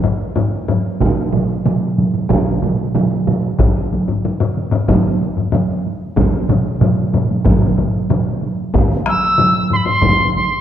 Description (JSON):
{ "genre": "japanese traditional, taiko drum ensemble", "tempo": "93 BPM", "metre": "4/4", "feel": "straight", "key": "unclear", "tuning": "A4 = 442 Hz", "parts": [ { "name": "taiko ensemble", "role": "percussion", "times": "0.0-10.6 s", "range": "none", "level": "-19 LUFS", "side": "right 1 dB", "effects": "none" }, { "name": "taiko ensemble", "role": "percussion", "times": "0.0-10.2 s", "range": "none", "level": "-19 LUFS", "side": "left 4 dB", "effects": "none" }, { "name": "taiko ensemble", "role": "percussion", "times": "1.0-8.3 s", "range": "none", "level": "-19 LUFS", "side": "right 4 dB", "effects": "none" }, { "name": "taiko ensemble", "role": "percussion", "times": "1.0-10.2 s", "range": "none", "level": "-19 LUFS", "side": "equal", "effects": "none" }, { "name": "piccolo", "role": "melody", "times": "9.1-10.6 s", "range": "B5 to E6", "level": "-14 LUFS", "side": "equal", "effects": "none" } ], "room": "wet scoring stage reverb, RT60 1.6 s", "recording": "dark, warm production", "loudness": "-14 LUFS", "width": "side -10 dB against mid", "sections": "0.0-8.7 A section; 8.7-10.6 B section", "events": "none", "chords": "none" }